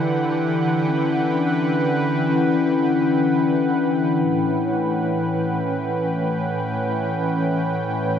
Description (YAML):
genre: ambient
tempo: free time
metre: none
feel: none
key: unclear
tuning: A4 = 439 Hz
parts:
  - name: warm analog pad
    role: sustained chords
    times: 0.0-8.2 s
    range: A2 to G5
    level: -21 LUFS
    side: equal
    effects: chorus, tremolo
  - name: vibraphone with soft mallets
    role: arpeggios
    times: 0.0-4.5 s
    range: C#4 to E4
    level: -22 LUFS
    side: left 4 dB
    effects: tape echo
  - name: bowed-like drone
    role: drone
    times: 0.0-8.2 s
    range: none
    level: barely audible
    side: none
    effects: none
room: wet cathedral reverb, RT60 5.5 s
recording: none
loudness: -18 LUFS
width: side -8 dB against mid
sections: 0.0-4.2 A section; 4.2-8.2 A section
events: none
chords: 0.0 Em9; 4.2 A13